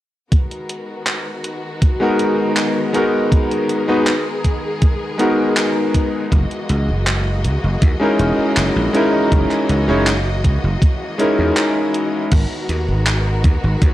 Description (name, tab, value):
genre	vaporwave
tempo	80 BPM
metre	4/4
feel	straight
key	G# minor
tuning	A4 = 440 Hz
part	clear symphonic string section	sustained chords	0.3-13.9 s	D#3 to D#5	-25 LUFS	left 1 dB	none
part	electronic kick drum	drums	0.3-13.9 s	none	-14 LUFS	equal	none
part	gated 80s digital drum machine	drums	0.3-13.9 s	crash cymbal, handclaps, hi-hat	-23 LUFS	equal	gated reverb
part	bright electric grand piano	accompaniment	2.0-12.3 s	G#3 to C#5	-17 LUFS	equal	lush chorus, analog delay
part	dry thumbed slap bass	bass	6.3-13.9 s	E1 to E2	-18 LUFS	equal	transformer saturation
room	light reverb, digital ambience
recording	dry, gritty hardware recording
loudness	-15 LUFS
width	side -14 dB against mid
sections	0.3-12.3 A section; 12.3-13.9 B section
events	break 11.6-12.3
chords	0.3 G#m9; 6.3 F#13; 12.3 G#m9